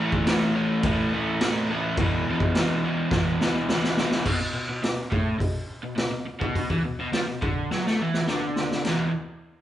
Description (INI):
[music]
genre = garage rock duo or trio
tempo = 104 BPM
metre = 4/4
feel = straight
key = unclear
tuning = A4 = 440 Hz
[part]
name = crunchy overdriven guitar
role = riff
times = 0.0-9.1 s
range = E2 to A3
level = -25 LUFS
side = equal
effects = spring reverb
[part]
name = raw garage drum kit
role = drums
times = 0.1-9.0 s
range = crash cymbal, hi-hat, kick drum, snare drum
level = -26 LUFS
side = equal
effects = none
[sound]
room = light reverb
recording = band playing live in one room, nothing above 10.5 kHz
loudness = -22 LUFS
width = side -12 dB against mid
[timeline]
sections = 0.0-4.3 A section; 4.3-8.9 B section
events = drum fill 3.1-4.3, 7.7-8.9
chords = 0.0 A5; 2.0 E5; 4.3 B5; 8.9 E5